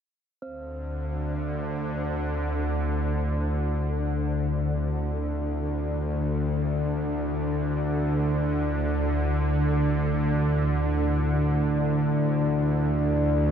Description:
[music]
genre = dark ambient drone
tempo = free time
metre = none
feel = none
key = unclear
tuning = A4 = 442 Hz
[part]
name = dark analog pad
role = sustained chords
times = 0.4-13.5 s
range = A3 to D5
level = -35 LUFS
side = left 1 dB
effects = chorus, shimmer reverb
[part]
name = bowed-like drone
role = drone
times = 0.6-13.5 s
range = D2 to D3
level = -24 LUFS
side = equal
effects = built-in reverb
[part]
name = bronze singing bowl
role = texture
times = 0.4-13.5 s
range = C4 to C5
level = -45 LUFS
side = right 1 dB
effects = none
[sound]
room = wet huge ambient reverb, RT60 8.2 s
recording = in a vast, echoing space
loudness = -24 LUFS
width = side -8 dB against mid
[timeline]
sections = 0.4-13.5 A section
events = fade-in on analog synth pad 0.4-13.5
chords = 0.4 Dsus2

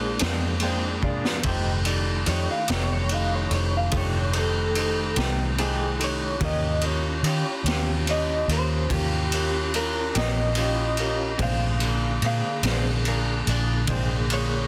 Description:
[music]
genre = slow blues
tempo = 48 BPM (dotted quarters)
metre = 12/8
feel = straight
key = unclear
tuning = A4 = 437 Hz
[part]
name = electric guitar through a small old amp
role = melody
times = 0.0-14.7 s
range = G4 to F5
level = -32 LUFS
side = equal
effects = tremolo, slapback echo
[part]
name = bright grand piano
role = accompaniment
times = 0.0-14.6 s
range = A3 to C6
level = -36 LUFS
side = equal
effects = none
[part]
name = mellow tonewheel organ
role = sustained chords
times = 0.0-14.7 s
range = D3 to G5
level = -36 LUFS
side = equal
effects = slow rotary speaker, chorus vibrato
[part]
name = vintage muted fingered electric bass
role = bass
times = 0.0-14.7 s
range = F1 to Eb3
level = -28 LUFS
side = equal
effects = none
[part]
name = electric guitar through a small old amp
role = accompaniment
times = 0.2-14.1 s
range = Bb2 to G4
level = -38 LUFS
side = equal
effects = harmonic tremolo
[part]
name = raw garage drum kit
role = drums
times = 0.2-14.5 s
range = kick drum, ride cymbal, snare drum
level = -29 LUFS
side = equal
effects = soft clipping on kick
[sound]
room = small room ambience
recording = dense, heavily limited modern master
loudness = -24 LUFS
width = mono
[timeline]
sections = 0.0-14.7 A section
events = clean electric guitar solo 0.0-14.7; grand piano fill 0.2-1.4; drum fill 1.0-1.4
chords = 0.0 Bb9; 1.4 F9; 6.4 Eb9; 11.4 Bb9

